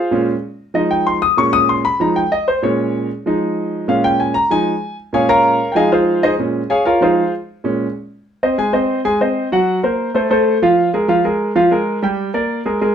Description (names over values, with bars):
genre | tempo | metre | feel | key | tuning
jazz | 191 BPM | 4/4 | straight | unclear | A4 = 440 Hz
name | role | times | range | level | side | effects
warm concert grand piano | solo | 0.0-12.9 s | Bb2 to Eb6 | -14 LUFS | equal | none
room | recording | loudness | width
moderate studio reverb, RT60 0.6 s | none | -14 LUFS | side -8 dB against mid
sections
0.0-8.3 A section; 8.3-12.9 B section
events
grand piano solo 0.0-8.3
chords
0.1 Bbm7; 0.8 Fm7; 1.4 Bbm7; 2.0 Fm7; 2.6 Bbm7; 3.3 Fm7; 3.9 Bbm7; 4.5 Fm7; 5.1 Bbm7; 5.8 Fm7; 6.4 Bbm7; 7.0 Fm7; 7.6 Bbm7; 8.3 Ab; 9.5 Gb; 10.2 F; 10.8 Bb5; 12.0 Gm